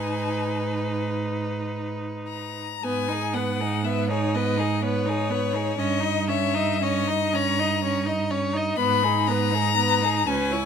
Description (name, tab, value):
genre	classical, slow romantic movement for string quartet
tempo	35-42 BPM (dotted quarters)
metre	6/8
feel	rubato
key	G# minor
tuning	A4 = 443 Hz
part	clear violin	melody	0.0-10.7 s	C#5 to B5	-26 LUFS	left 10 dB	none
part	rich violin	second line	0.0-10.7 s	G#4 to D#5	-29 LUFS	left 3 dB	none
part	clear viola	accompaniment	0.0-10.7 s	B3 to E4	-29 LUFS	right 2 dB	none
part	rich cello	bass	0.0-10.7 s	C#2 to G#2	-27 LUFS	right 6 dB	none
room	light reverb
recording	close, detailed microphones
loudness	-22 LUFS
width	side -7 dB against mid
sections	0.0-2.8 A section; 2.8-10.7 A section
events	none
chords	0.0 G#m; 5.8 D#7/G; 8.8 G#m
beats	1.14 | 2.83 4.34 | 5.78 7.34 | 8.79 10.28